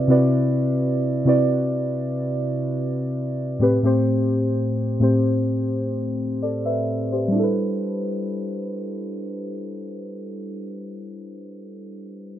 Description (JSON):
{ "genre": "R&B", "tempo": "64 BPM", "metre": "4/4", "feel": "straight", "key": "G major", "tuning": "A4 = 442 Hz", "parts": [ { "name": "muted felt-like synth keys", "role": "accompaniment", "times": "0.0-12.4 s", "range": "A2 to E5", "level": "-21 LUFS", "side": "equal", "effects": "chorus" } ], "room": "wet booth ambience, RT60 0.2 s", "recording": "low-pass filter", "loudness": "-20 LUFS", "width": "side -11 dB against mid", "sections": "0.0-7.3 A section; 7.3-11.1 B section", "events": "filter sweep 0.0-7.3", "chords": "0.0 Cmaj9#11; 3.6 Am7; 7.3 G69" }